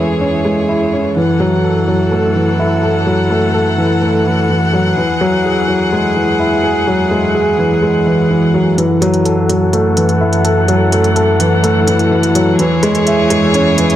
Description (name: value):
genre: piano and strings electronica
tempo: 126 BPM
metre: 4/4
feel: straight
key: F# minor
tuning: A4 = 442 Hz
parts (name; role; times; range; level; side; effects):
- warm string quartet; sustained chords; 0.0-14.0 s; E2 to F#5; -16 LUFS; equal; low-pass filter
- dark upright piano; riff; 0.0-14.0 s; E3 to E5; -12 LUFS; equal; digital delay
- electronic hi-hat; drums; 8.8-14.0 s; none; -22 LUFS; right 1 dB; high-pass filter on hats, low-pass filter on hats
room: moderate concert hall reverb, RT60 2.4 s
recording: none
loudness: -11 LUFS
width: side -12 dB against mid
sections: 0.0-8.8 A section; 8.8-14.0 B section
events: build-up 8.8-14.0; filter sweep on string quartet 8.8-14.0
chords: 0.0 C#m/E; 1.2 F#m7; 5.0 Eadd9; 8.8 F#m7; 12.6 C#m/E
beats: 0.21 0.69 | 1.16 1.64 2.12 2.59 | 3.07 3.54 4.02 4.50 | 4.97 5.45 5.92 6.40 | 6.88 7.35 7.83 8.31 | 8.78 9.26 9.73 10.21 | 10.69 11.16 11.64 12.12 | 12.59 13.07 13.54